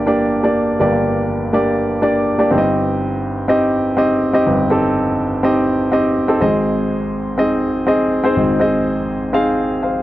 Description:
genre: pop.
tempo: 123 BPM.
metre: 4/4.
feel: straight.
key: unclear.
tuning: A4 = 440 Hz.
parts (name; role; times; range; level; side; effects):
warm grand piano; solo; 0.0-10.0 s; G1 to F5; -14 LUFS; equal; none.
room: light reverb.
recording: dry, close 1970s-style studio recording.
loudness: -14 LUFS.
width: side -15 dB against mid.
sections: 0.0-10.0 A section.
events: none.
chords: 0.0 Gm; 2.5 Cm/G; 6.4 Ab.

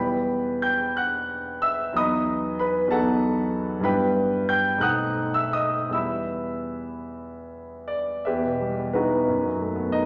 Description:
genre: classical, romantic character piece for solo piano.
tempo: 49-65 BPM (dotted quarters).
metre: 6/8.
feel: rubato.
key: E minor.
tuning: A4 = 440 Hz.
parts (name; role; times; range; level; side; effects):
warm grand piano; solo; 0.0-10.1 s; B1 to G6; -25 LUFS; equal; none.
room: wet recital hall reverb, RT60 1.5 s.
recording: none.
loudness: -25 LUFS.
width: mono.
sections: 0.0-8.3 A section; 8.3-10.1 B section.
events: none.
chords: 0.0 Em; 2.0 B7/E; 3.9 Em/G; 4.8 B7b9; 6.0 Em; 9.3 B7/F#.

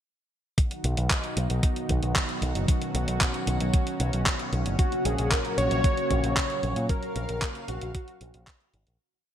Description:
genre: italo disco.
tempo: 114 BPM.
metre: 4/4.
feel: straight.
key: F# major.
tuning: A4 = 440 Hz.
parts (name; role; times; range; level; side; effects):
lush unison pad; sustained chords; 0.6-9.0 s; A#2 to E#5; -32 LUFS; equal; chorus.
clean 12-bit digital drum machine; drums; 0.6-9.0 s; handclaps, hi-hat; -30 LUFS; equal; gated reverb.
electronic kick drum; drums; 0.6-8.6 s; none; -25 LUFS; equal; none.
picked electric bass with an envelope filter; bass; 0.8-9.0 s; F#1 to A#2; -28 LUFS; equal; none.
wide unison lead; melody; 4.8-8.4 s; F#4 to C#5; -29 LUFS; equal; vintage 12-bit sampler grit, digital delay, shimmer reverb.
room: light reverb, digital ambience.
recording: bright 1980s-style digital production.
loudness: -24 LUFS.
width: side -10 dB against mid.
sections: 0.6-9.0 verse.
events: fade-out 6.2-9.0.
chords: 0.6 B; 4.8 F#/A#.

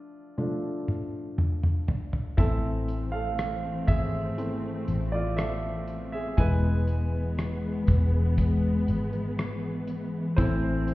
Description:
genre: pop ballad.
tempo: 60 BPM.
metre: 4/4.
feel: straight.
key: A harmonic minor.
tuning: A4 = 440 Hz.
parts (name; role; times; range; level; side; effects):
clear baby grand piano; accompaniment; 0.0-10.9 s; E3 to G#5; -32 LUFS; right 1 dB; none.
damped 70s drum kit; drums; 0.4-10.9 s; hi-hat, kick drum, rim click, toms; -25 LUFS; equal; none.
warm studio string section; sustained chords; 2.4-10.9 s; E3 to C4; -31 LUFS; left 2 dB; none.
vintage muted fingered electric bass; bass; 2.4-10.9 s; E1 to A1; -28 LUFS; equal; none.
room: light reverb, studio reverb.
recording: heard muffled through a wall, stone room reverb, EQ.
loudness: -25 LUFS.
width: side -17 dB against mid.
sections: 0.0-10.9 A section.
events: grand piano solo 0.0-10.9; drum fill 0.4-2.4.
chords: 0.0 Dm; 2.4 Am; 6.4 E; 10.4 Am.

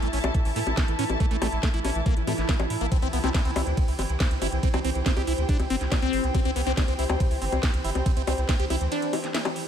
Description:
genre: psychedelic trance.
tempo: 140 BPM.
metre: 4/4.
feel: straight.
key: unclear.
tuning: A4 = 440 Hz.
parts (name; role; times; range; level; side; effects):
pulsing gated texture; sustained chords; 0.0-9.7 s; E3 to E4; -34 LUFS; right 2 dB; chorus, built-in reverb, sidechain pumping.
liquid acid bass; riff; 0.0-9.4 s; A3 to G4; -31 LUFS; moving between left 6 dB and right 9 dB; phaser, auto-pan, vintage 12-bit sampler grit, sidechain pumping, tape echo.
round analog bass; bass; 0.0-8.9 s; G1 to A2; -28 LUFS; equal; none.
garage drum kit; drums; 0.0-9.6 s; bongos, hi-hat, ride cymbal, snare drum; -31 LUFS; left 3 dB; small room ambience.
muted studio string section; texture; 0.0-9.7 s; C4 to A5; -33 LUFS; left 2 dB; sidechain pumping.
electronic kick drum; drums; 0.3-8.6 s; none; -24 LUFS; equal; small room ambience.
room: digital ambience.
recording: none.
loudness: -22 LUFS.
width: side -9 dB against mid.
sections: 0.0-9.7 A section.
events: break 8.9-9.7.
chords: 0.0 A5; 2.9 C5.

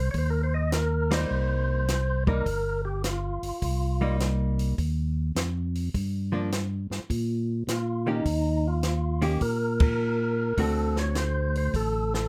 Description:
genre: soul jazz organ trio.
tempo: 104 BPM.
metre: 4/4.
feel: swing 68% on 8ths.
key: unclear.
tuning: A4 = 439 Hz.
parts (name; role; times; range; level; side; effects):
percussive tonewheel organ; melody; 0.0-4.2, 7.7-12.3 s; Eb4 to Eb5; -32 LUFS; equal; fast rotary speaker, plate reverb.
tonewheel organ; bass; 0.0-12.3 s; G1 to Bb2; -29 LUFS; equal; overdrive, chorus vibrato, slow rotary speaker.
compact cocktail drum kit; drums; 0.1-12.2 s; hi-hat, kick drum, ride cymbal, snare drum; -31 LUFS; equal; none.
archtop guitar, miked and amplified; accompaniment; 1.1-12.2 s; D3 to G4; -33 LUFS; equal; none.
room: moderate club reverb, RT60 0.5 s.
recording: none.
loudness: -27 LUFS.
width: mono.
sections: 0.0-12.3 A section.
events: band accent 1.0, 9.7.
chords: 0.0 Cm7; 5.9 Gm7; 8.3 Eb5; 10.6 D7.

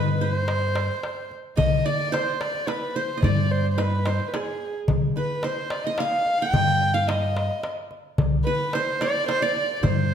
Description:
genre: Arabic maqam ensemble.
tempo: 109 BPM.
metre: 3/4.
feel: straight.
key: C maqam nahawand.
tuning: A4 = 440 Hz.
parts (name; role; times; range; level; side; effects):
dark violin; melody; 0.0-10.1 s; Ab4 to G5; -26 LUFS; equal; none.
qanun; second line; 0.0-10.1 s; Ab4 to G5; -30 LUFS; right 4 dB; none.
upright bass; bass; 0.0-10.1 s; C2 to G2; -24 LUFS; equal; none.
darbuka; percussion; 0.2-10.0 s; none; -26 LUFS; left 2 dB; none.
room: wet recital hall reverb, RT60 1.3 s.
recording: none.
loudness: -21 LUFS.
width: side -8 dB against mid.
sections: 0.0-10.1 A section.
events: none.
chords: none.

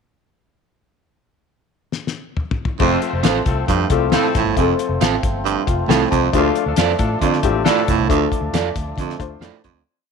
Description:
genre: uptempo 1960s-style soul.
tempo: 136 BPM.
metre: 4/4.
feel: straight.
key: F major.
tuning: A4 = 440 Hz.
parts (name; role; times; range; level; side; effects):
cloth-damped thuddy drum kit; drums; 1.9-9.7 s; crash cymbal, hi-hat, kick drum, snare drum, toms; -22 LUFS; left 3 dB; none.
warm horn section; second line; 2.8-8.0 s; F3 to C5; -24 LUFS; left 11 dB; none.
warm upright piano; accompaniment; 2.8-9.6 s; A3 to A5; -23 LUFS; left 13 dB; none.
overdriven tonewheel organ; sustained chords; 2.8-9.8 s; F3 to D4; -27 LUFS; equal; wide subtle chorus.
raspy baritone saxophone; riff; 2.8-9.8 s; D2 to A2; -21 LUFS; right 13 dB; none.
vintage muted fingered electric bass; bass; 2.8-9.8 s; F1 to D3; -23 LUFS; equal; none.
electric guitar at the edge of break-up; stabs; 3.2-9.6 s; C4 to F5; -22 LUFS; right 12 dB; none.
room: light reverb, small room ambience.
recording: 1960s-style stereo with parts hard left and right.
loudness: -16 LUFS.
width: side -6 dB against mid.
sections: 1.0-2.8 pickup bar; 2.8-9.9 A section.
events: drum fill 1.9-2.8; upright piano fill 5.4-6.3; fade-out 8.1-9.9.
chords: 1.0 N.C.; 2.8 F; 6.3 Dm.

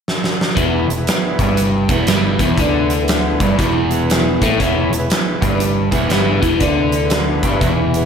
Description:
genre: blues rock power trio and southern rock.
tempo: 119 BPM.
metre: 4/4.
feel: swing 64% on 8ths.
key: unclear.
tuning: A4 = 440 Hz.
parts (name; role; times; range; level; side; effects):
huge arena drum kit; drums; 0.1-8.0 s; hi-hat, kick drum, snare drum; -18 LUFS; equal; none.
tonewheel organ; sustained chords; 0.6-8.1 s; B3 to C#5; -24 LUFS; right 3 dB; slow rotary speaker.
crunchy overdriven guitar; riff; 0.6-8.1 s; E2 to D4; -17 LUFS; equal; phaser, slapback echo.
overdriven picked electric bass; bass; 0.6-8.1 s; E1 to D2; -21 LUFS; equal; none.
room: wet recital hall reverb, RT60 1.3 s, studio reverb.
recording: big arena sound.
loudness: -14 LUFS.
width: side -7 dB against mid.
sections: 0.6-8.1 A section.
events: drum fill 0.1-0.6.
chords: 0.0 N.C.; 0.6 E.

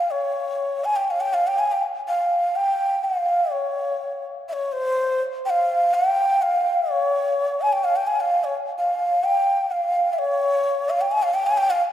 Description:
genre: indian classical.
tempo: 125 BPM.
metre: 7/4.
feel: straight.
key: unclear.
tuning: A4 = 440 Hz.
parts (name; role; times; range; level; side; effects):
breathy mellow bansuri; solo; 0.0-11.8 s; C5 to Ab5+21c; -19 LUFS; equal; none.
room: wet church reverb, RT60 3.8 s.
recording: recorded in a church or concert hall.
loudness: -19 LUFS.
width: side -11 dB against mid.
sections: 0.0-3.5 A section; 3.5-11.9 B section.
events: speeding up 0.0-11.9.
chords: none.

